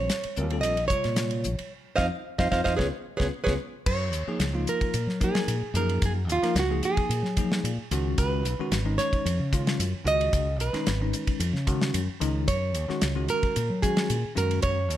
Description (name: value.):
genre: electric jazz fusion.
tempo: 111 BPM.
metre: 4/4.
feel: straight.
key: unclear.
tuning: A4 = 440 Hz.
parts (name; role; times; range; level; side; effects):
nylon-string guitar; melody; 0.0-15.0 s; F4 to F5; -28 LUFS; right 3 dB; none.
bell-like tine electric piano; accompaniment; 0.0-14.8 s; C3 to Db5; -32 LUFS; left 3 dB; medium stereo tremolo.
fingered electric bass; bass; 0.0-15.0 s; Ab1 to Gb3; -28 LUFS; equal; none.
damped 70s drum kit; drums; 0.1-15.0 s; crash cymbal, hi-hat, kick drum, ride cymbal, snare drum; -30 LUFS; equal; none.
room: light reverb.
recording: none.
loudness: -24 LUFS.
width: side -12 dB against mid.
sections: 0.0-3.9 A section; 3.9-15.0 B section.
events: band accent 1.7-3.9; drum fill 3.3-3.9.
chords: 0.0 Bbm6; 1.7 F5; 2.8 Db7; 3.9 Gb69; 7.9 Db9sus4; 12.5 Gb69.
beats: 0.09 0.63 1.17 | 1.71 2.25 2.78 3.32 | 3.86 4.40 4.94 5.48 | 6.02 6.55 7.09 7.63 | 8.17 8.71 9.25 9.79 | 10.32 10.86 11.40 11.94 | 12.48 13.02 13.55 14.09 | 14.63.